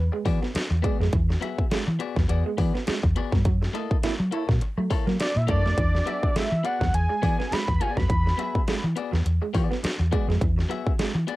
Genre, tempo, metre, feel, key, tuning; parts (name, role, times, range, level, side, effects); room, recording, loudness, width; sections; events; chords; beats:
funk; 103 BPM; 4/4; swing 56% on 16ths; A4 = 440 Hz
fat analog lead; melody; 0.0-0.6, 5.2-8.8 s; B4 to B5; -28 LUFS; right 1 dB; cassette tape
vintage muted fingered electric bass; bass; 0.0-11.2 s; E2 to F#3; -24 LUFS; equal
clean electric guitar; accompaniment; 0.1-11.4 s; A#3 to E5; -33 LUFS; left 8 dB
electric guitar through a small old amp; riff; 0.1-11.2 s; E3 to B3; -33 LUFS; right 8 dB
dubstep drum kit; drums; 0.3-11.4 s; hi-hat, kick drum, snare drum; -25 LUFS; equal; cassette tape
breathy trombone; second line; 4.0-4.4 s; E4; -28 LUFS; right 6 dB
little or no reverb; home recording on cassette; -22 LUFS; side -18 dB against mid
0.0-11.4 A section
band accent 3.5-5.8
0.0 E9; 3.5 F#7#9; 5.8 E9
0.55 | 1.13 1.71 2.29 2.87 | 3.46 4.04 4.62 5.20 | 5.78 6.36 6.94 7.52 | 8.10 8.68 9.26 9.83 | 10.41 10.99